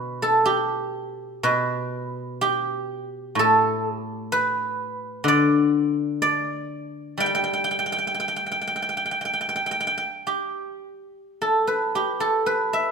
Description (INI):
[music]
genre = chinese traditional, Chinese solo plucked strings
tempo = 52-64 BPM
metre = 4/4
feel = rubato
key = G gong mode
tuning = A4 = 440 Hz
[part]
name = guzheng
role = solo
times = 0.0-12.9 s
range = A2 to G5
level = -21 LUFS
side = equal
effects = none
[sound]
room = moderate recital hall reverb, RT60 1.5 s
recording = minimal, uncompressed stereo recording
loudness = -21 LUFS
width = side -5 dB against mid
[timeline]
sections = 0.0-11.4 A section; 11.4-12.9 B section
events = none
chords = none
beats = 0.45 1.43 2.40 | 3.36 4.30 5.25 6.22 | 7.18 8.16 9.18 10.28 | 11.39 12.44